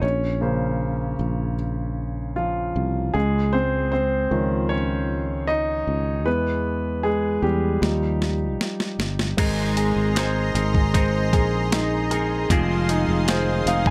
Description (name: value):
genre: pop ballad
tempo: 77 BPM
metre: 4/4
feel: straight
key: Ab major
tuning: A4 = 440 Hz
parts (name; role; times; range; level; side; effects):
- clear concert grand piano; accompaniment; 0.0-13.9 s; Db3 to Ab5; -26 LUFS; equal; none
- sustaining fretless electric bass; bass; 0.0-13.9 s; F1 to E2; -27 LUFS; equal; none
- boom bap sampler-style drum kit; drums; 7.8-13.9 s; crash cymbal, hi-hat, kick drum, snare drum; -26 LUFS; equal; none
- lush unison pad; sustained chords; 9.4-13.9 s; Ab4 to C6; -31 LUFS; equal; chorus
- electric guitar with an envelope filter; arpeggios; 9.4-13.9 s; F2 to Bb4; -30 LUFS; equal; none
room: light reverb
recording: none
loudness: -23 LUFS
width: mono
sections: 0.0-9.4 A section; 9.4-13.9 B section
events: grand piano solo 0.0-9.4; drum fill 7.8-9.4; grand piano fill 13.3-13.9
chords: 0.0 Bbmadd9; 3.1 Dbadd9; 6.3 E; 7.8 Ebadd9; 9.4 Abadd9; 12.5 Fm7